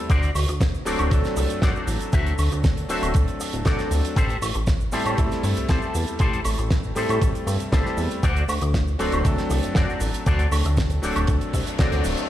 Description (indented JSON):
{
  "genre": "nu-disco, nu disco",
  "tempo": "118 BPM",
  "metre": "4/4",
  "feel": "straight",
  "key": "unclear",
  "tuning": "A4 = 440 Hz",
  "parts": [
    { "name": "bright electric grand piano", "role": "accompaniment", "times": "0.0-12.3 s", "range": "F#3 to A4", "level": "-28 LUFS", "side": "equal", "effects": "slapback echo" },
    { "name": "electric guitar with an envelope filter", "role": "riff", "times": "0.1-12.0 s", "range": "F#4 to E5", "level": "-30 LUFS", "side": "left 3 dB", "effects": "ensemble chorus, slapback echo" },
    { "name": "chorused synth bass", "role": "bass", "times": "0.1-12.2 s", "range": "D1 to A2", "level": "-24 LUFS", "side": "equal", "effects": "none" },
    { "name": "damped 70s drum kit", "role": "drums", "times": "0.1-12.3 s", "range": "hi-hat, snare drum, woodblock", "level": "-29 LUFS", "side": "right 2 dB", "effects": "none" },
    { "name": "electronic kick drum", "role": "drums", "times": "0.1-11.9 s", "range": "none", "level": "-22 LUFS", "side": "equal", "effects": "none" },
    { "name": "tube shaker", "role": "percussion", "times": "0.1-12.3 s", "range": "none", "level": "-41 LUFS", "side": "right 3 dB", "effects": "none" },
    { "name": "reverse cymbal", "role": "sound effects", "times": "11.5-12.3 s", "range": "none", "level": "-31 LUFS", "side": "left 4 dB", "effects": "none" }
  ],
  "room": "little or no reverb",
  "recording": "played on a big sound system in a bare room, stone room reverb",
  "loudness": "-20 LUFS",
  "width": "side -12 dB against mid",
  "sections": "0.0-12.3 A section",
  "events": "reverse cymbal 11.5-12.3",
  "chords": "0.1 D7; 4.2 Am7; 8.2 D7",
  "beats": "| 0.10 0.60 1.11 1.62 | 2.13 2.64 3.15 3.66 | 4.16 4.67 5.18 5.69 | 6.20 6.71 7.21 7.72 | 8.23 8.74 9.25 9.76 | 10.27 10.77 11.28 11.79"
}